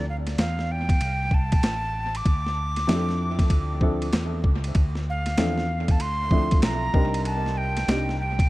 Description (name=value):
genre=hip hop, jazz-hop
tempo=96 BPM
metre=4/4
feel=swing 64% on 16ths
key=D minor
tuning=A4 = 439 Hz
part: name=breathy concert flute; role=melody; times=0.0-8.5 s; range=F5 to D6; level=-29 LUFS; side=right 1 dB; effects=dub echo
part: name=mellow fretless electric bass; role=bass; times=0.0-8.5 s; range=A1 to F2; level=-28 LUFS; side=equal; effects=none
part: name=boom bap sampler-style drum kit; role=drums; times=0.3-8.5 s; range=hi-hat, kick drum, ride cymbal, snare drum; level=-24 LUFS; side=equal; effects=vintage 12-bit sampler grit
part: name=warm upright piano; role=accompaniment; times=2.9-8.1 s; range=F3 to Bb4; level=-29 LUFS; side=equal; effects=dub echo
room=light reverb, digital ambience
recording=echo-heavy mix, vinyl crackle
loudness=-21 LUFS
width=side -18 dB against mid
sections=0.0-4.8 A section; 4.8-8.5 B section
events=none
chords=0.0 Dm9; 6.9 Cm9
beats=0.38 1.00 1.63 | 2.25 2.88 3.50 4.13 | 4.75 5.38 6.00 6.63 | 7.25 7.88